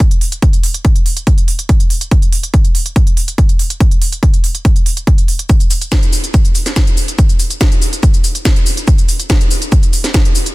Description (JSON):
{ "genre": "techno", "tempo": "142 BPM", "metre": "4/4", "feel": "straight", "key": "none", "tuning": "none", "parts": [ { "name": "electronic kick drum", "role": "drums", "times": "0.0-10.2 s", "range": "none", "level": "-10 LUFS", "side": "equal", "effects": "none" }, { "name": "techno drum kit", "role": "drums", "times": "0.0-10.5 s", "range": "hi-hat, shaker, snare drum", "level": "-18 LUFS", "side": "right 1 dB", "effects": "sidechain pumping on hats, sidechain pumping on cymbals, sidechain pumping on perc" } ], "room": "little or no reverb", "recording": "dense, heavily limited modern master", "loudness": "-10 LUFS", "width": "side -21 dB against mid", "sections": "0.0-10.5 A section", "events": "none", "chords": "none", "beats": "0.00 | 0.42 0.85 1.27 1.69 | 2.11 2.54 2.96 3.38 | 3.80 4.23 4.65 5.07 | 5.50 5.92 6.34 6.76 | 7.18 7.61 8.03 8.45 | 8.88 9.30 9.72 10.14" }